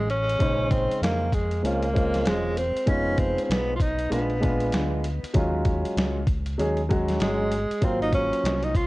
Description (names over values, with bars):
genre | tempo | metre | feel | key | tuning
hip hop, jazz-hop | 97 BPM | 4/4 | swing 61% on 16ths | Bb minor | A4 = 440 Hz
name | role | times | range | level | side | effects
breathy tenor saxophone | melody | 0.0-8.9 s | Ab3 to F4 | -26 LUFS | equal | cassette tape, tape echo, plate reverb
deep dub fingered electric bass | bass | 0.0-8.9 s | E1 to F2 | -29 LUFS | equal | none
dusty soul sampler-style drum kit | drums | 0.1-8.9 s | hi-hat, kick drum, snare drum | -27 LUFS | equal | cassette tape
warm upright piano | accompaniment | 0.4-8.7 s | Db3 to C5 | -27 LUFS | equal | cassette tape, plate reverb
room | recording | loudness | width
light reverb | home recording on cassette | -22 LUFS | side -20 dB against mid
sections
0.4-8.9 A section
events
none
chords
0.4 Bbm11; 2.9 Fm7b5; 4.1 Bb7b9; 5.3 Ebm11; 7.8 Ab13